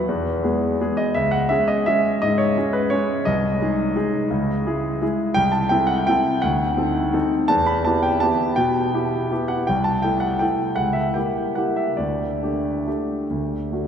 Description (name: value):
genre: classical, piano waltz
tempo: 134-183 BPM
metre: 3/4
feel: rubato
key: unclear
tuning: A4 = 440 Hz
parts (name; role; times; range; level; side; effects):
- clear concert grand piano; solo; 0.0-13.9 s; B#1 to B5; -19 LUFS; equal; none
room: wet cathedral reverb, RT60 6.2 s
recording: in a vast, echoing space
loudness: -19 LUFS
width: side -8 dB against mid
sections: 0.0-13.9 A section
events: none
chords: 0.1 E; 1.2 C#m; 3.2 G#/B#; 4.3 C#m; 5.4 Am/C; 6.4 D7b9; 7.5 Em; 9.7 Am7/C; 10.8 C#dim7; 12.0 Dsus4; 13.3 D